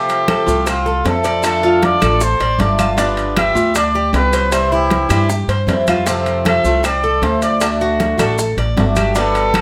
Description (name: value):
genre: latin, Cuban son and guajira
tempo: 156 BPM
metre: 4/4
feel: straight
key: F major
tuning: A4 = 445 Hz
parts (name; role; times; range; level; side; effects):
- breathy trumpet; melody; 0.0-9.6 s; F4 to E5; -20 LUFS; equal; none
- picked swing-style acoustic guitar; accompaniment; 0.0-9.6 s; B2 to G4; -22 LUFS; equal; none
- Cuban tres; arpeggios; 0.0-9.6 s; C4 to D5; -23 LUFS; equal; none
- congas; percussion; 0.1-9.6 s; none; -26 LUFS; equal; none
- maracas; percussion; 0.1-9.6 s; none; -33 LUFS; equal; none
- timbales; percussion; 0.1-9.6 s; none; -28 LUFS; equal; none
- bongos; percussion; 0.3-9.6 s; none; -30 LUFS; equal; none
- claves; percussion; 0.3-9.6 s; none; -32 LUFS; equal; none
- upright bass; bass; 0.5-9.6 s; G1 to G2; -22 LUFS; equal; none
room: light reverb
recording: none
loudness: -15 LUFS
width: mono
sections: 0.0-9.6 A section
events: none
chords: 0.0 F; 1.4 Dm; 3.0 G7; 4.5 C; 6.1 F; 7.6 D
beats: 0.28 0.67 1.06 | 1.44 1.83 2.21 2.60 | 2.98 3.37 3.75 4.14 | 4.53 4.91 5.30 5.68 | 6.07 6.46 6.84 7.23 | 7.61 8.00 8.38 8.77 | 9.16 9.54